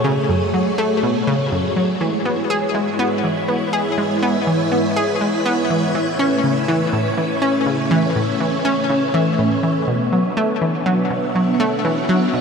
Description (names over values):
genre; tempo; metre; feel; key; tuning
ambient, sequencer-driven space music; 122 BPM; 4/4; straight; B dorian; A4 = 439 Hz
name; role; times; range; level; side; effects
string machine, full ensemble; sustained chords; 0.0-12.4 s; G#3 to F#5; -21 LUFS; right 1 dB; phaser, ensemble chorus
analog pluck; riff; 0.0-12.4 s; F#2 to G#4; -19 LUFS; equal; chorus, ping-pong delay
wind-like tuned noise texture; texture; 0.0-12.4 s; C#5 to E5; -27 LUFS; equal; built-in reverb
room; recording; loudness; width
wet huge ambient reverb, RT60 8.0 s; in a vast, echoing space; -16 LUFS; side -5 dB against mid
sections
0.0-12.4 A section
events
none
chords
0.0 F#madd9; 2.0 E; 5.9 Aadd9; 9.9 Bmadd9